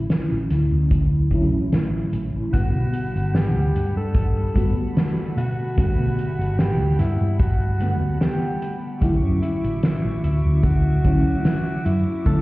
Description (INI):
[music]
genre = vaporwave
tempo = 74 BPM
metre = 4/4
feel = swing 54% on 16ths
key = D major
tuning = A4 = 440 Hz
[part]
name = FM electric piano with soft pad layer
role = accompaniment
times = 0.0-12.4 s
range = D3 to F#5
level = -26 LUFS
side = equal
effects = tremolo, ensemble chorus, analog delay
[part]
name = mellow fretless electric bass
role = bass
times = 0.0-12.4 s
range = G1 to B2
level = -21 LUFS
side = equal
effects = none
[part]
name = soft-mallet drum kit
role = drums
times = 0.1-12.4 s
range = hi-hat, snare drum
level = -24 LUFS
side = equal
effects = none
[part]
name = kick drum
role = drums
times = 0.9-12.4 s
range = none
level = -22 LUFS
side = equal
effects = none
[part]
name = growling alto saxophone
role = melody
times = 2.5-12.4 s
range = E4 to A4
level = -30 LUFS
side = equal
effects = vintage 12-bit sampler grit, tape echo
[part]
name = dark studio string section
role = sustained chords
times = 2.5-12.4 s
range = G3 to D6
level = -38 LUFS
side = equal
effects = none
[sound]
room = light reverb, studio reverb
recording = heard muffled through a wall, stone room reverb, cassette tape, EQ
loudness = -18 LUFS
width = side -19 dB against mid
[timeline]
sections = 0.0-12.4 A section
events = none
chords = 0.0 Dmaj9; 2.5 Gmaj9; 9.0 Dmaj9